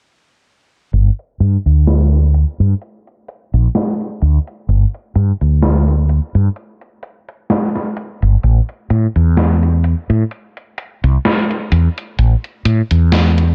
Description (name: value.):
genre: vaporwave.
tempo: 64 BPM.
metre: 4/4.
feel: swing 55% on 16ths.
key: G dorian.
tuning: A4 = 443 Hz.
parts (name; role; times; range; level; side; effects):
mellow fretless electric bass; bass; 0.9-13.5 s; G1 to A2; -14 LUFS; equal; none.
gated 80s digital drum machine; drums; 0.9-13.5 s; hi-hat, snare drum; -20 LUFS; equal; gated reverb, gated reverb snare.
room: little or no reverb.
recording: cassette tape, low-pass filter.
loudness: -15 LUFS.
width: mono.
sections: 0.9-13.5 A section.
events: filter sweep 0.9-13.5.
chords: none.